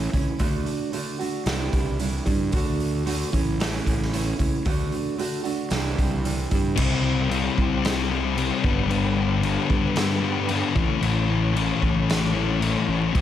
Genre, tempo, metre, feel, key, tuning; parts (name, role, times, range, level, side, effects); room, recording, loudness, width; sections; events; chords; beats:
quiet-loud alternative rock; 113 BPM; 4/4; straight; A4 = 440 Hz
fingerpicked steel-string acoustic guitar; arpeggios; 0.0-6.8 s; A2 to F#4; -27 LUFS; right 4 dB; plate reverb
fuzz fingered electric bass; bass; 0.0-13.2 s; G1 to G2; -27 LUFS; equal; overdrive
raw garage drum kit; drums; 0.1-13.2 s; crash cymbal, hi-hat, kick drum, snare drum; -26 LUFS; equal
mellow tonewheel organ; sustained chords; 6.8-13.2 s; D4 to C#6; -35 LUFS; right 3 dB; chorus vibrato, fast rotary speaker, plate reverb
thick fuzz guitar; riff; 6.8-13.2 s; G2 to E4; -23 LUFS; left 8 dB; distortion
light reverb; -21 LUFS; side -11 dB against mid
0.0-6.8 A section; 6.8-13.2 B section
0.4 D; 1.5 Cadd9; 2.5 D; 3.3 A; 4.7 D; 5.7 Cadd9; 6.8 C; 8.6 G; 10.8 A
| 0.40 0.93 1.47 2.00 | 2.53 3.06 3.60 4.13 | 4.66 5.19 5.72 6.26 | 6.79 7.32 7.85 8.38 | 8.91 9.44 9.97 10.50 | 11.03 11.56 12.09 12.62 | 13.15